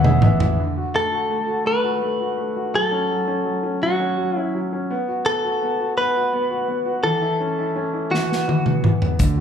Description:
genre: six-eight pop ballad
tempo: 56 BPM (dotted quarters)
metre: 6/8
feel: straight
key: unclear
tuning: A4 = 440 Hz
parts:
  - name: direct-recorded clean electric guitar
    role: melody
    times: 0.0-8.9 s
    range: F#4 to C#5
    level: -21 LUFS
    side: left 1 dB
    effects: none
  - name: bright upright piano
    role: accompaniment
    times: 0.0-9.4 s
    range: D3 to F#5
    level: -24 LUFS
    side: equal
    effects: none
  - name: fingered electric bass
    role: bass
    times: 0.0-0.6, 9.2-9.4 s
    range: E1 to D2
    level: -21 LUFS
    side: equal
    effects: none
  - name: modern studio drum kit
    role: drums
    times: 0.0-0.6, 8.1-9.4 s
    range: hi-hat, kick drum, snare drum, toms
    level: -19 LUFS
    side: equal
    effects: none
room: moderate large studio reverb, RT60 1.3 s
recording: band playing live in one room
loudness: -19 LUFS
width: side -8 dB against mid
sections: 0.6-9.4 A section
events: drum fill 0.0-0.6, 8.1-9.2; upright piano fill 0.0-0.6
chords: 0.0 E; 0.6 D; 2.7 F#m; 4.9 B5; 7.0 A/E; 8.1 E5

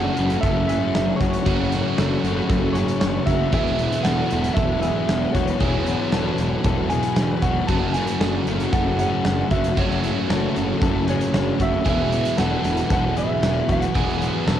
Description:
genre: rock, shoegaze and dream pop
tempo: 115 BPM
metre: 4/4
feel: straight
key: unclear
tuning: A4 = 441 Hz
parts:
  - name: electric guitar through a small old amp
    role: melody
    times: 0.0-14.6 s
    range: C#5 to A5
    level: -27 LUFS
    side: right 3 dB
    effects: vibrato effect, cassette tape, analog delay
  - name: soft additive organ-like pad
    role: sustained chords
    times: 0.0-14.6 s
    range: E3 to F#5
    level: -33 LUFS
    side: equal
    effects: none
  - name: direct-recorded clean electric guitar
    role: arpeggios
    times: 0.0-14.6 s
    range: F#4 to A4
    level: -31 LUFS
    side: left 10 dB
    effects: analog chorus, cassette tape, analog delay
  - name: biting overdriven guitar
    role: riff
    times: 0.0-14.6 s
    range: F#2 to F#4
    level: -27 LUFS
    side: right 8 dB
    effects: reverse reverb, cassette tape
  - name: thick fuzz guitar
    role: riff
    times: 0.0-14.6 s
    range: E2 to F#3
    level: -25 LUFS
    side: left 7 dB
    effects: distortion, ensemble chorus, cassette tape
  - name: fuzz fingered electric bass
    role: bass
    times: 0.0-14.6 s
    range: E1 to F#1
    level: -26 LUFS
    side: equal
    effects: overdrive
  - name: huge arena drum kit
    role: drums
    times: 0.2-14.6 s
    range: hi-hat, kick drum, snare drum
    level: -25 LUFS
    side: right 1 dB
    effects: cassette tape
room: light reverb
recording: home recording on cassette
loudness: -18 LUFS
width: side -10 dB against mid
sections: 0.0-14.6 A section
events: none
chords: 0.0 F#m7; 3.5 Esus2; 7.7 F#m7; 11.9 Esus2

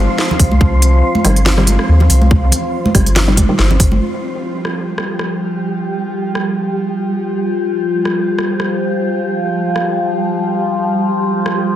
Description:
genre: deep dubstep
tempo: 141 BPM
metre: 4/4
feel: swing 55% on 16ths, half-time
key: unclear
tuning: A4 = 440 Hz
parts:
  - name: overtone-sweeping drone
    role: sustained chords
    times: 0.0-11.8 s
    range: F3 to F4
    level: -20 LUFS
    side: left 2 dB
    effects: chorus, built-in reverb
  - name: soft dub sub bass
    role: bass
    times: 0.0-4.0 s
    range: G1 to Eb2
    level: -12 LUFS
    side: equal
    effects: none
  - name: wind-like tuned noise texture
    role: texture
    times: 0.0-11.8 s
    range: G3 to C5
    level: -20 LUFS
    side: right 1 dB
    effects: built-in reverb
  - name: garage drum kit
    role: drums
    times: 0.2-11.6 s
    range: hi-hat, rim click, snare drum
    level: -19 LUFS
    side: equal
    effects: none
  - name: congas and bongos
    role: percussion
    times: 0.3-4.0 s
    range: none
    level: -20 LUFS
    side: right 3 dB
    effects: dub echo
  - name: electronic kick drum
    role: drums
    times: 0.4-3.9 s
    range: none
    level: -14 LUFS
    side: equal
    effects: none
  - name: filtered dub chord stab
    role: stabs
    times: 1.2-3.6 s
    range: C3 to G3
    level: -22 LUFS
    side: equal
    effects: chorus, dub echo
room: light reverb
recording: dense, heavily limited modern master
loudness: -13 LUFS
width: side -12 dB against mid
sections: 0.0-4.0 A section; 4.0-11.8 B section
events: none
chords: 0.0 Cm; 4.0 Fsus2

